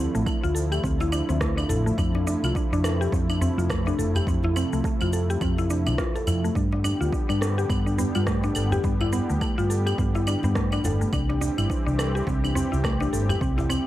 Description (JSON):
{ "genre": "organic downtempo", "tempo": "105 BPM", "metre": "4/4", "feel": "swing 59% on 16ths", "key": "unclear", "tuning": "A4 = 443 Hz", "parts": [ { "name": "warm analog pad", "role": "sustained chords", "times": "0.0-13.9 s", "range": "C3 to G4", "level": "-32 LUFS", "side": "equal", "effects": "chorus, sidechain pumping" }, { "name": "mallet-like synth pluck", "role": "arpeggios", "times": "0.0-13.9 s", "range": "A3 to A4", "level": "-27 LUFS", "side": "equal", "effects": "chorus, tape echo" }, { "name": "woody fretless electric bass", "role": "bass", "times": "0.0-13.8 s", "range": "F1 to G2", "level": "-25 LUFS", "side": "equal", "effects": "transformer saturation, ensemble chorus, sidechain pumping" }, { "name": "electronic cabasa, claves and rim click", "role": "drums", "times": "0.2-13.8 s", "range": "none", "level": "-33 LUFS", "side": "equal", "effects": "overdrive" }, { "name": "electronic kick drum", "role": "drums", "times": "0.3-13.5 s", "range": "none", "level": "-29 LUFS", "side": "equal", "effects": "none" }, { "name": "djembe", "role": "percussion", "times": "1.0-13.8 s", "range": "none", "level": "-34 LUFS", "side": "equal", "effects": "none" } ], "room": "digital ambience", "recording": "dry, gritty hardware recording", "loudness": "-22 LUFS", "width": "side -14 dB against mid", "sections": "0.0-13.9 A section", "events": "none", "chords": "0.0 Dmadd9; 2.0 Fmaj7; 6.6 G; 11.1 C", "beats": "0.27 0.84 1.41 | 1.99 2.56 3.13 3.70 | 4.27 4.84 5.41 5.99 | 6.56 7.13 7.70 8.27 | 8.84 9.41 9.98 10.56 | 11.13 11.70 12.27 12.84 | 13.41" }